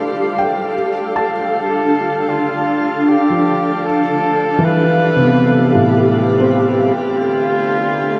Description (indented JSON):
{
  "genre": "ambient",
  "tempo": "77 BPM",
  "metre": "4/4",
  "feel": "straight",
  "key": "D dorian",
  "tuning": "A4 = 440 Hz",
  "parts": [
    { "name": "warm flugelhorn", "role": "melody", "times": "0.0-8.2 s", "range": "F4 to B4", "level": "-22 LUFS", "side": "equal", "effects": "diffuse ambient delay" },
    { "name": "granular cloud pad", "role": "sustained chords", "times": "0.0-8.2 s", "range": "D4 to F5", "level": "-19 LUFS", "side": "equal", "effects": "built-in reverb" },
    { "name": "felt-muted upright piano", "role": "arpeggios", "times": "0.0-8.2 s", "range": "A2 to A5", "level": "-20 LUFS", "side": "equal", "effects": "diffuse ambient delay" },
    { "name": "overtone-sweeping drone", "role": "drone", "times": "7.2-8.2 s", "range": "D3 to A3", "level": "-27 LUFS", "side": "equal", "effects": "chorus, built-in reverb" }
  ],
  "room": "wet shimmer reverb, RT60 8.6 s",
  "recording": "dark, warm production",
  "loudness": "-15 LUFS",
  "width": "mono",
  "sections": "0.0-7.0 A section; 7.0-8.2 B section",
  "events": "none",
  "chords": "0.0 Fadd9; 0.7 Dm; 3.8 Fadd9; 7.0 Dm",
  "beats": "| 0.73 1.51 2.29 3.07 | 3.85 4.63 5.41 6.18 | 6.96 7.74"
}